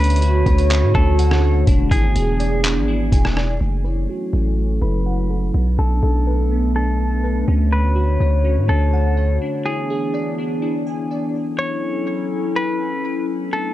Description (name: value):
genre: hip hop, atmospheric cloud-rap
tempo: 124 BPM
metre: 4/4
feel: half-time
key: F# minor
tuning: A4 = 435 Hz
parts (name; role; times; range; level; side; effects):
- semi-hollow electric guitar; melody; 0.0-13.7 s; G#4 to C#5; -26 LUFS; equal; low-pass filter, tape echo
- warbly tape-like pad; sustained chords; 0.0-13.7 s; D3 to C#5; -23 LUFS; equal; chorus, built-in reverb, sidechain pumping, low-pass filter
- glassy digital keys; arpeggios; 0.0-11.4 s; A3 to A5; -27 LUFS; left 1 dB; chorus, low-pass filter, tape echo
- long sustained 808-style bass; bass; 0.0-9.4 s; E1 to A2; -17 LUFS; equal; none
- trip hop sampler-style drum kit; drums; 0.0-3.5 s; handclaps, hi-hat, kick drum, rim click; -19 LUFS; equal; vintage 12-bit sampler grit
room: little or no reverb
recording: dry, gritty hardware recording, cassette tape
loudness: -16 LUFS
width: side -14 dB against mid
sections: 0.0-3.6 A section; 3.6-11.3 B section; 11.3-13.7 A section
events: filter sweep 3.6-11.3; break 9.4-11.3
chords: 0.0 Dmaj7; 1.7 E7; 3.6 F#m7; 5.5 Bm7; 7.5 Dmaj7; 9.4 E7; 11.3 F#m7